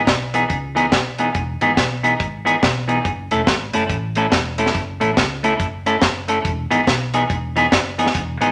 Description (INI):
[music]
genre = ska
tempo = 141 BPM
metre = 4/4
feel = swing 62% on 8ths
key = E major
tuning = A4 = 440 Hz
[part]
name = hollow-body short-scale fingered electric bass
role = bass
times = 0.0-8.5 s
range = E1 to C#2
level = -30 LUFS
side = equal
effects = none
[part]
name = deep reggae drum kit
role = drums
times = 0.1-8.5 s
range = hi-hat, kick drum, snare drum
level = -22 LUFS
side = equal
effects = none
[part]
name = semi-hollow electric guitar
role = accompaniment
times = 0.3-8.5 s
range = E3 to A4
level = -21 LUFS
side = equal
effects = slapback echo
[sound]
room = moderate studio reverb, RT60 0.7 s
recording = faint mains hum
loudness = -19 LUFS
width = mono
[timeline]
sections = 0.0-8.5 A section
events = none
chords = 0.0 Emaj7; 3.1 F#m7; 6.5 Emaj7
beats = 0.08 0.51 0.93 | 1.35 1.78 2.20 2.63 | 3.05 3.48 3.90 4.33 | 4.75 5.18 5.60 6.03 | 6.45 6.87 7.30 7.72 | 8.15